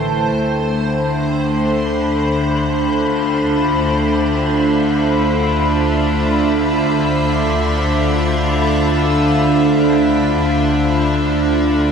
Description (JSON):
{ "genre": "ambient", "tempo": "free time", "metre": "none", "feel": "none", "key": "D dorian", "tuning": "A4 = 440 Hz", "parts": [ { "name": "evolving wavetable pad", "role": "sustained chords", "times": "0.0-11.9 s", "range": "D3 to G5", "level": "-16 LUFS", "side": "right 1 dB", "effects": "chorus, built-in reverb" }, { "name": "rich symphonic double bass section", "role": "bass", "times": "0.0-11.9 s", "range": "A1 to D2", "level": "-23 LUFS", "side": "equal", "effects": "none" }, { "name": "analog drone", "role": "drone", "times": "0.0-11.9 s", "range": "D3 to A3", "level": "-22 LUFS", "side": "left 1 dB", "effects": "chorus" }, { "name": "wind-like tuned noise texture", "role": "texture", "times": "0.0-11.9 s", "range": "A5 to B5", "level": "-24 LUFS", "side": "left 2 dB", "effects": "built-in reverb, lush chorus" } ], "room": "wet huge ambient reverb, RT60 7.9 s", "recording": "dreamy mix soaked in reverb", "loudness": "-14 LUFS", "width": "side -6 dB against mid", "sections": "0.0-11.9 A section", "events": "none", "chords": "0.4 Dm7", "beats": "free time" }